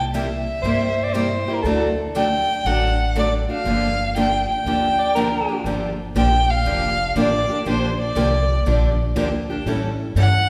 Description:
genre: acoustic string swing (jazz manouche)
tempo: 120 BPM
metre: 4/4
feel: swing 66% on 8ths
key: G minor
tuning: A4 = 440 Hz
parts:
  - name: dark violin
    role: melody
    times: 0.0-10.5 s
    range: C5 to G5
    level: -24 LUFS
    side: equal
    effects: none
  - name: upright bass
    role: bass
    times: 0.0-10.5 s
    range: F1 to A2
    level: -25 LUFS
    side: equal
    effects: none
  - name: picked steel-string acoustic guitar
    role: accompaniment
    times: 0.1-10.3 s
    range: C3 to A4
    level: -26 LUFS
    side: equal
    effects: none
  - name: picked steel-string acoustic guitar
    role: accompaniment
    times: 0.1-10.3 s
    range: C3 to A4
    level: -30 LUFS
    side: equal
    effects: none
  - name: breathy soprano saxophone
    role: second line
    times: 0.6-5.6 s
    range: A4 to D5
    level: -27 LUFS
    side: equal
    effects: none
room: wet recital hall reverb, RT60 1.7 s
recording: recorded in a church or concert hall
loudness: -20 LUFS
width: mono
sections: 0.0-5.7 A section; 5.7-10.5 A section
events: none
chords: 0.0 C7; 1.6 D; 3.6 Gm7; 7.7 Bb6; 9.7 A7

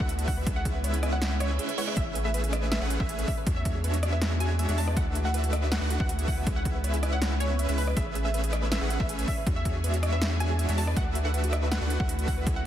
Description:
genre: future bass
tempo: 160 BPM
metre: 4/4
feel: half-time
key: unclear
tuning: A4 = 443 Hz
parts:
  - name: wide unison pluck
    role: melody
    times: 0.0-12.7 s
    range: B4 to A5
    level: -36 LUFS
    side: right 2 dB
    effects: sidechain pumping, tape echo
  - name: shimmering ambient pad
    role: sustained chords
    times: 0.0-12.7 s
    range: C#3 to G#4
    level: -39 LUFS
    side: equal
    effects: chorus, built-in reverb, sidechain pumping
  - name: airy dreamy lead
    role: arpeggios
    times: 0.0-12.7 s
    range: E5 to F#5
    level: -42 LUFS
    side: right 1 dB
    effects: none
  - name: soft round pluck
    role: arpeggios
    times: 0.0-12.6 s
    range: F#4 to G#5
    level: -42 LUFS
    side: left 2 dB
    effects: chorus, sidechain pumping, dub echo
  - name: supersaw chords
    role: riff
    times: 0.0-12.7 s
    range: G#3 to F#5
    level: -34 LUFS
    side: right 1 dB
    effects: sidechain pumping
  - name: saturated sub bass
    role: bass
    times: 0.0-12.7 s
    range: A1 to E2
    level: -28 LUFS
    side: equal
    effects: sidechain pumping
  - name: electronic kick drum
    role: drums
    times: 0.0-12.5 s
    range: none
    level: -29 LUFS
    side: equal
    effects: overdrive
  - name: big-room dance drum kit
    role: drums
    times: 0.1-12.5 s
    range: hi-hat, rim click, snare drum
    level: -34 LUFS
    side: equal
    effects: overdrive
  - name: reverse cymbal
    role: sound effects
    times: 1.5-2.0 s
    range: none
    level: -38 LUFS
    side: right 8 dB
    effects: none
room: digital ambience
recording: dense, heavily limited modern master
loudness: -25 LUFS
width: side -11 dB against mid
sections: 0.0-12.7 A section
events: reverse cymbal 1.5-2.0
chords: 0.5 C#m7; 2.0 Amaj9; 3.3 E13; 5.0 D69; 6.5 C#m7; 8.0 Amaj9; 9.3 E13; 11.0 D69

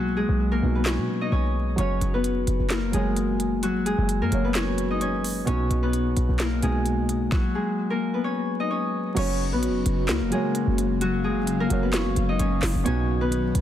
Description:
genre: hip hop, trap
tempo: 130 BPM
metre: 4/4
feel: half-time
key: F# major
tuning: A4 = 438 Hz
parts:
  - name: Celtic harp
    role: melody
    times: 0.0-13.6 s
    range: F#3 to D#5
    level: -25 LUFS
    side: left 3 dB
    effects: digital delay
  - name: felt-muted upright piano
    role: accompaniment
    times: 0.0-13.6 s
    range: B2 to C#5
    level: -30 LUFS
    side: right 4 dB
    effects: none
  - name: short 808-style bass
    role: bass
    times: 0.0-13.6 s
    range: F#1 to B2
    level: -26 LUFS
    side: equal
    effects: none
  - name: trap drum kit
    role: drums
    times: 0.9-13.6 s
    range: crash cymbal, handclaps, hi-hat, kick drum, snare drum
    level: -29 LUFS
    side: equal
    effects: none
  - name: airy breathy pad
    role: sustained chords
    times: 9.2-13.6 s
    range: C#3 to E#5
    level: -31 LUFS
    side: equal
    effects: chorus
room: light reverb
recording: dense, heavily limited modern master, vinyl crackle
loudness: -22 LUFS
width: side -11 dB against mid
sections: 0.0-9.2 A section; 9.2-13.6 B section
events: break 0.0-1.8; stop 7.3-9.2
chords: 0.0 B; 1.8 F#; 5.5 B; 9.2 F#; 12.9 B

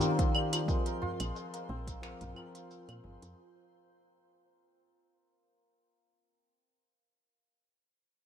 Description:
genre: organic downtempo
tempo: 89 BPM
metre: 4/4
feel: swing 54% on 16ths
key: unclear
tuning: A4 = 440 Hz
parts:
  - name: tine electric piano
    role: accompaniment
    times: 0.0-3.4 s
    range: Eb3 to Bb4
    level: -37 LUFS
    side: left 1 dB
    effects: sidechain pumping, ping-pong delay
  - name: santur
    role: arpeggios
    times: 0.0-6.7 s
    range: F3 to Bb4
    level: -38 LUFS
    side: left 1 dB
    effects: ping-pong delay
  - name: organic electronic drum kit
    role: drums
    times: 0.0-3.4 s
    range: claves, finger snaps, hi-hat, shaker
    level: -37 LUFS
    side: equal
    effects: none
  - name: twinkling granular texture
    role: texture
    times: 0.0-3.4 s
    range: C5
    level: -50 LUFS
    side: left 1 dB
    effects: built-in reverb
  - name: electronic kick drum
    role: drums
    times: 0.2-2.0 s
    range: none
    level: -32 LUFS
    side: equal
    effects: none
  - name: udu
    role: percussion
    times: 1.0-3.2 s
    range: none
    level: -42 LUFS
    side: equal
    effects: none
  - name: woody FM bass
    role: bass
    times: 1.2-3.3 s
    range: Ab1 to Bb2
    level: -41 LUFS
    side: equal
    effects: none
room: light reverb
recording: none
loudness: -31 LUFS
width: side -9 dB against mid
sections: 0.0-3.4 A section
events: fade-out 0.0-3.4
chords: 0.0 Eb7; 0.7 Ab69/Bb

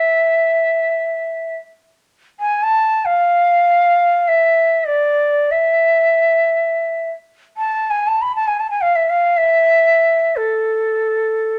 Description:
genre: Arabic maqam ensemble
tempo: free time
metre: none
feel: none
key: unclear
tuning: A4 = 440 Hz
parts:
  - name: bright reedy ney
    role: solo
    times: 0.0-11.6 s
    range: A4 to B5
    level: -16 LUFS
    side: equal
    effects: none
room: moderate studio reverb, RT60 0.8 s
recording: none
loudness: -16 LUFS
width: mono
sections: 0.0-11.6 A section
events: none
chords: none

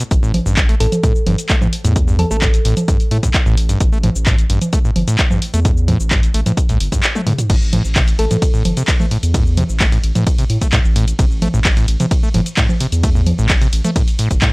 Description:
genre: acid house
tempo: 130 BPM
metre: 4/4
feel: straight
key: A minor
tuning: A4 = 440 Hz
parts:
  - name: acid bass, saw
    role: riff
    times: 0.0-14.5 s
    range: G2 to A3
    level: -20 LUFS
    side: equal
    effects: tube saturation, sidechain pumping
  - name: punchy analog drum machine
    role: drums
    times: 0.0-14.5 s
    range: cabasa, congas, crash cymbal, handclaps, hi-hat, ride cymbal, toms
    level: -19 LUFS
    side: equal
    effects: none
  - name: saturated sub bass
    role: bass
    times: 0.1-14.4 s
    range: G1 to A2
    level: -17 LUFS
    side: equal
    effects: sidechain pumping
  - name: electronic kick drum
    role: drums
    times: 0.1-14.5 s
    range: none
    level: -15 LUFS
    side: equal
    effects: none
  - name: thumb-piano-like synth pluck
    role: melody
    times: 0.8-2.4, 8.2-8.5 s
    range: A4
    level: -24 LUFS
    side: equal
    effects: chorus, tape echo
room: digital ambience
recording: dry, gritty hardware recording, cassette tape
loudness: -13 LUFS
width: side -26 dB against mid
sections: 0.0-14.5 A section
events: drum fill 7.2-7.5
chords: none

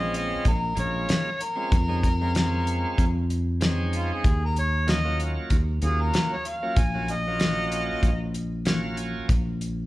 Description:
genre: straight-eighth soul blues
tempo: 95 BPM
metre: 4/4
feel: swing 55% on 16ths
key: unclear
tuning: A4 = 435 Hz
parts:
  - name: mellow harmonica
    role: melody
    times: 0.0-8.3 s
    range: F4 to Ab5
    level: -29 LUFS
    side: left 1 dB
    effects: overdrive
  - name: bright tonewheel organ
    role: accompaniment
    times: 0.0-9.3 s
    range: Gb3 to Ab5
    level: -32 LUFS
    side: right 2 dB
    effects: slow rotary speaker, overdrive
  - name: fingered electric bass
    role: bass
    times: 0.0-9.9 s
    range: Bb1 to F2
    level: -27 LUFS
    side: equal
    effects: none
  - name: damped 70s drum kit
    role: drums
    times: 0.1-9.8 s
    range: hi-hat, kick drum, snare drum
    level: -24 LUFS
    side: equal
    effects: none
room: moderate large studio reverb, RT60 1.2 s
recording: band playing live in one room, cassette tape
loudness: -22 LUFS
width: side -17 dB against mid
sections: 0.0-9.9 A section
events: tonewheel organ fill 8.3-9.3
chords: 0.0 Bbm9; 4.2 Ebm9; 9.3 N.C.

